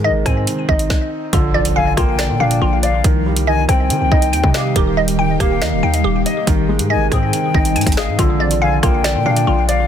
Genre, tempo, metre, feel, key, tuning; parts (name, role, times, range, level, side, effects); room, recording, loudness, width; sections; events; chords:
hip hop, drill; 140 BPM; 4/4; half-time; A4 = 441 Hz
dark baby grand piano; accompaniment; 0.0-9.9 s; D3 to Eb5; -21 LUFS; right 2 dB
glassy wavetable pluck; arpeggios; 0.0-9.9 s; F4 to Ab5; -21 LUFS; equal; chorus, ping-pong delay
hard-hitting 808-style bass; bass; 0.0-9.9 s; D1 to Eb3; -19 LUFS; equal
drill drum kit; drums; 0.3-9.8 s; finger snaps, hi-hat, kick drum, rim click, snare drum; -18 LUFS; equal; soft clipping on snare
ethereal airy pad; sustained chords; 2.2-9.9 s; D3 to Ab4; -23 LUFS; equal; ensemble chorus, built-in reverb, phaser
impact; sound effects; 1.3-3.0 s; -27 LUFS; equal
breathy silver concert flute; second line; 1.8-9.9 s; Eb5 to Ab5; -22 LUFS; left 7 dB; ping-pong delay
little or no reverb; dense, heavily limited modern master; -13 LUFS; side -9 dB against mid
0.0-1.3 A section; 1.3-9.9 B section
stop 0.9-1.3; impact 1.3-3.0
0.0 Ab; 1.3 Bb; 3.0 Cm; 4.8 Eb; 6.5 Ab; 8.2 Bb